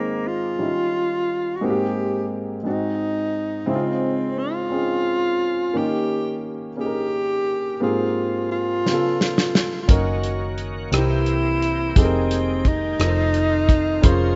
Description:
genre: slow gospel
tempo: 58 BPM (dotted quarters)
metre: 6/8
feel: straight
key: Ab major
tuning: A4 = 440 Hz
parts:
  - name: warm tenor saxophone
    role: melody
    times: 0.0-14.4 s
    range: Bb3 to G4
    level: -26 LUFS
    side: equal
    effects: none
  - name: warm upright piano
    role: accompaniment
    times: 0.0-14.4 s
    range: Ab2 to C5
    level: -27 LUFS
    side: equal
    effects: none
  - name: warm soul drum kit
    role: drums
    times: 8.9-14.2 s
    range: hi-hat, kick drum, rim click, snare drum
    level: -20 LUFS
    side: equal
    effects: none
  - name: bright tonewheel organ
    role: sustained chords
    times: 9.9-14.4 s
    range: Eb3 to G5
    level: -34 LUFS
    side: equal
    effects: overdrive, chorus vibrato, slow rotary speaker
  - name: hollow-body short-scale fingered electric bass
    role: bass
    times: 9.9-14.4 s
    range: F1 to C2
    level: -25 LUFS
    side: equal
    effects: none
room: light reverb, small room ambience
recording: rough home demo mix, nothing above 7.7 kHz, faint mains hum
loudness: -22 LUFS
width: mono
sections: 0.0-14.4 A section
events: drum fill 8.9-9.9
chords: 0.0 Ab/Eb; 0.6 Eb9; 1.6 Abmaj9; 2.7 Ab7; 3.7 Dbmaj9; 5.8 Eb7; 7.8 Abmaj9; 8.9 Dbaug7; 9.9 Gb6; 10.9 C7; 12.0 Fm11; 13.0 F7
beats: 0.59 | 1.62 2.65 | 3.69 4.72 | 5.75 6.78 | 7.82 8.85 | 9.89 10.93 | 11.96 13.00 | 14.04

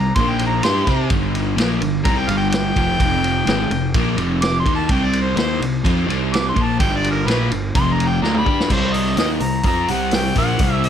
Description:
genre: blues rock power trio and southern rock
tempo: 126 BPM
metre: 4/4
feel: straight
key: unclear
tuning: A4 = 440 Hz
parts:
  - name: warm harmonica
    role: melody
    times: 0.0-10.9 s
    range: Bb4 to D6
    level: -23 LUFS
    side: equal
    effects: overdrive, plate reverb, analog delay
  - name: crunchy overdriven guitar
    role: riff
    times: 0.0-10.9 s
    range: F2 to C5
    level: -20 LUFS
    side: left 1 dB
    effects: none
  - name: fuzz fingered electric bass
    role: bass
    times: 0.0-10.9 s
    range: F1 to C3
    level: -23 LUFS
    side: equal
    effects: overdrive
  - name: vintage drum kit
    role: drums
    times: 0.2-10.9 s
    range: crash cymbal, hi-hat, kick drum, ride cymbal, snare drum, toms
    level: -21 LUFS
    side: equal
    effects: none
room: light reverb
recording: none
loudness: -16 LUFS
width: side -9 dB against mid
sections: 0.0-8.7 A section; 8.7-10.9 B section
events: harmonica solo 0.0-8.7; drum fill 8.2-8.7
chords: 0.2 Bb5; 0.6 C5; 1.1 Gm7; 3.0 Fm7; 4.9 Cm7; 6.8 Gm7; 7.7 F5; 8.2 G; 8.7 Cm7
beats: 0.15 0.63 | 1.10 1.57 2.05 2.52 | 3.00 3.47 3.94 4.42 | 4.89 5.37 5.84 6.32 | 6.79 7.26 7.74 8.21 | 8.69 9.17 9.64 10.12 | 10.60

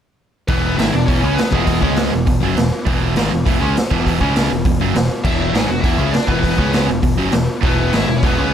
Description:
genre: punk rock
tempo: 201 BPM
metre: 4/4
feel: straight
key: E major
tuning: A4 = 442 Hz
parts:
  - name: high-gain lead guitar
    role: melody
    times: 0.5-2.1, 5.2-8.5 s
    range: G#3 to G#5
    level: -22 LUFS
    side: left 1 dB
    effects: distortion
  - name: cranked stack guitar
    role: riff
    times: 0.5-8.5 s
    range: E2 to C#4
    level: -21 LUFS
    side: right 11 dB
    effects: overdrive
  - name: sludgy distorted guitar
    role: riff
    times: 0.5-8.5 s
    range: E2 to C#4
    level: -21 LUFS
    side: left 10 dB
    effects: overdrive
  - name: growling picked electric bass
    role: bass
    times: 0.5-8.5 s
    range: E1 to C#2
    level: -22 LUFS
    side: equal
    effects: overdrive
  - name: raw garage drum kit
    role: drums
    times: 0.5-8.3 s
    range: crash cymbal, hi-hat, kick drum, snare drum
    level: -18 LUFS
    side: equal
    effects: none
room: light reverb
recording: none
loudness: -14 LUFS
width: side -9 dB against mid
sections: 0.5-8.5 A section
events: none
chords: 0.5 E; 1.8 C#5; 2.1 E; 4.2 C#5; 4.5 E; 6.6 C#5; 6.9 E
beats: | 0.48 0.78 1.08 1.38 | 1.67 1.97 2.27 2.57 | 2.87 3.16 3.46 3.76 | 4.06 4.36 4.65 4.95 | 5.25 5.55 5.84 6.14 | 6.44 6.74 7.04 7.33 | 7.63 7.93 8.23 8.53

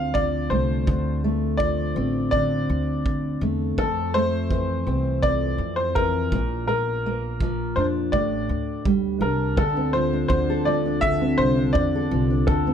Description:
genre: acoustic pop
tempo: 83 BPM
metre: 4/4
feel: straight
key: D minor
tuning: A4 = 441 Hz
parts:
  - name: clear upright piano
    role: melody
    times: 0.0-12.7 s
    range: A4 to F5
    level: -25 LUFS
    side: left 1 dB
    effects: plate reverb
  - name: fingerpicked steel-string acoustic guitar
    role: accompaniment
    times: 0.0-12.7 s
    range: F2 to A4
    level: -24 LUFS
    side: equal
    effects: none
  - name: upright bass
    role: bass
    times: 0.0-12.7 s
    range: A1 to F2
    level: -27 LUFS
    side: equal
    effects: none
  - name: kick drum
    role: drums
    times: 0.1-12.6 s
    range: none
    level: -27 LUFS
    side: right 1 dB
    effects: none
room: light reverb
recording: none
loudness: -20 LUFS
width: side -8 dB against mid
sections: 0.0-9.6 A section; 9.6-12.7 B section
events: none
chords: 0.0 Dm7; 3.8 Fmaj7; 6.3 Bb; 8.1 A7sus4; 9.6 Dm7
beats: 0.15 | 0.88 1.60 2.33 3.05 | 3.78 4.51 5.23 5.96 | 6.68 7.41 8.13 8.86 | 9.58 10.31 11.03 11.76 | 12.48

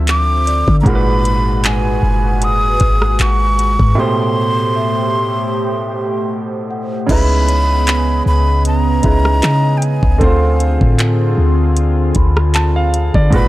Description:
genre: contemporary R&B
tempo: 77 BPM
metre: 4/4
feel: swing 54% on 16ths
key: unclear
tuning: A4 = 443 Hz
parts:
  - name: clear concert grand piano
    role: accompaniment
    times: 0.0-13.5 s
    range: G#2 to A5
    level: -20 LUFS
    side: right 2 dB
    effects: none
  - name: warm analog pad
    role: sustained chords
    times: 0.0-13.5 s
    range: C#3 to E5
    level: -21 LUFS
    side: equal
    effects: chorus
  - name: clean 808-style bass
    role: bass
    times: 0.0-13.5 s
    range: F#1 to D3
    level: -14 LUFS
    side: equal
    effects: none
  - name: breathy mellow silver concert flute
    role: melody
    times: 0.1-13.5 s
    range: F5 to D#6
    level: -19 LUFS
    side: equal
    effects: none
  - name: smooth R&B drum kit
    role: drums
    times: 0.1-13.5 s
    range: crash cymbal, handclaps, hi-hat, kick drum, rim click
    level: -16 LUFS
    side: equal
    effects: none
  - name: large celesta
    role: texture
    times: 0.5-13.5 s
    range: C#5 to A#6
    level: -31 LUFS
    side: left 1 dB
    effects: analog delay
room: small room ambience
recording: dry, gritty hardware recording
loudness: -12 LUFS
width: side -16 dB against mid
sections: 0.0-7.1 A section; 7.1-13.5 B section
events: break 4.0-7.1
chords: 0.0 Dm9; 0.9 G#m9; 4.0 Am9; 7.1 C#m9; 10.2 Dm7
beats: 0.08 | 0.86 1.64 2.42 3.20 | 3.98 4.75 5.53 6.31 | 7.09 7.87 8.65 9.43 | 10.21 10.99 11.77 12.55 | 13.33

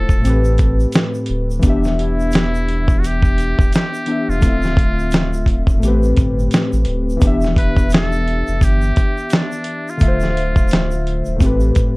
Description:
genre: lo-fi hip hop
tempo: 86 BPM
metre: 4/4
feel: swing 58% on 16ths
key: E phrygian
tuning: A4 = 440 Hz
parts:
  - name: trumpet with metal mute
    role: melody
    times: 0.0-11.3 s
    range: D4 to B4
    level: -26 LUFS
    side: equal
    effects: low-pass filter
  - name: warbly lo-fi synth keys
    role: accompaniment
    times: 0.0-12.0 s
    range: A2 to E5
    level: -20 LUFS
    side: left 1 dB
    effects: chorus, low-pass filter
  - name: warm sub bass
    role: bass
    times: 0.0-11.7 s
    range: D1 to A1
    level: -19 LUFS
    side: equal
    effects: none
  - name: dusty soul sampler-style drum kit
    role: drums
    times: 0.1-11.9 s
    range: hi-hat, kick drum, snare drum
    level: -15 LUFS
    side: equal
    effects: vintage 12-bit sampler grit
  - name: tube shaker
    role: percussion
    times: 0.1-11.9 s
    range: none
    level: -42 LUFS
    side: right 3 dB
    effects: none
room: little or no reverb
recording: dark, warm production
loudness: -14 LUFS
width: side -24 dB against mid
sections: 0.0-7.2 A section; 7.2-12.0 B section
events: none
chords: 0.2 Am7; 1.6 Em7; 4.4 Dm7; 5.8 Am7; 7.2 Em7; 10.0 Dm7; 11.4 Am7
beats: 0.24 0.94 | 1.64 2.33 3.03 3.73 | 4.43 5.12 5.82 6.52 | 7.22 7.92 8.61 9.31 | 10.01 10.71 11.40

